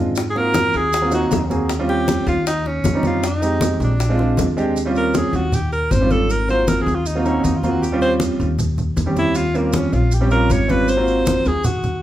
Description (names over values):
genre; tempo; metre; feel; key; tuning
Afro-Cuban jazz; 157 BPM; 4/4; straight; Eb mixolydian; A4 = 440 Hz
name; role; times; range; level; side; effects
warm concert grand piano; accompaniment; 0.0-11.5 s; Gb3 to Ab4; -20 LUFS; right 2 dB; none
upright bass; bass; 0.0-12.0 s; Ab1 to Ab2; -22 LUFS; equal; none
bongos; percussion; 0.2-4.6 s; none; -27 LUFS; left 4 dB; none
congas; percussion; 0.2-12.0 s; none; -24 LUFS; left 1 dB; none
maracas; percussion; 0.2-12.0 s; none; -35 LUFS; right 2 dB; none
breathy alto saxophone; melody; 0.3-12.0 s; Bb3 to Db5; -21 LUFS; equal; none
room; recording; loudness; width
moderate large studio reverb, RT60 0.9 s; band playing live in one room; -16 LUFS; side -13 dB against mid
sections
0.0-4.8 A section; 4.8-12.0 B section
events
alto saxophone solo 4.8-12.0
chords
0.2 Ab13; 1.7 Eb13; 3.2 Fm7; 4.0 Bb9; 4.8 Eb13; 6.3 Ab13; 7.8 Eb13; 10.9 Ab13